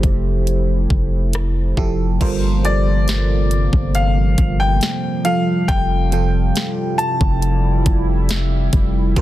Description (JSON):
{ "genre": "contemporary R&B", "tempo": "69 BPM", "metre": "4/4", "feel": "straight", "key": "unclear", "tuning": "A4 = 441 Hz", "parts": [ { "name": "FM electric piano", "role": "accompaniment", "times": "0.0-9.2 s", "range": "F3 to G5", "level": "-24 LUFS", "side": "right 4 dB", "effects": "chorus" }, { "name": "chorused pulse-width pad", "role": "sustained chords", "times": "0.0-9.2 s", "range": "C3 to G4", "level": "-24 LUFS", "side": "left 1 dB", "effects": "none" }, { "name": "long sustained 808-style bass", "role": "bass", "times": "0.0-9.2 s", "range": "F1 to G1", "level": "-18 LUFS", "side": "equal", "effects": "none" }, { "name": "trap drum kit", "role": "drums", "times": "0.0-9.2 s", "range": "crash cymbal, hi-hat, kick drum, rim click, snare drum", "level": "-19 LUFS", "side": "equal", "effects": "none" }, { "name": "bright grand piano", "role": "melody", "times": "2.6-8.3 s", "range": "D5 to A5", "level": "-23 LUFS", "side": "left 3 dB", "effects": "digital delay" } ], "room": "little or no reverb", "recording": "dense, heavily limited modern master", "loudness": "-15 LUFS", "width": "side -14 dB against mid", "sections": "0.0-2.2 A section; 2.2-9.2 B section", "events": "none", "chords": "0.0 Fmaj9; 2.2 Gm11; 5.3 Fmaj7", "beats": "0.47 1.34 | 2.21 3.08 3.95 4.82 | 5.69 6.56 7.43 8.30 | 9.17" }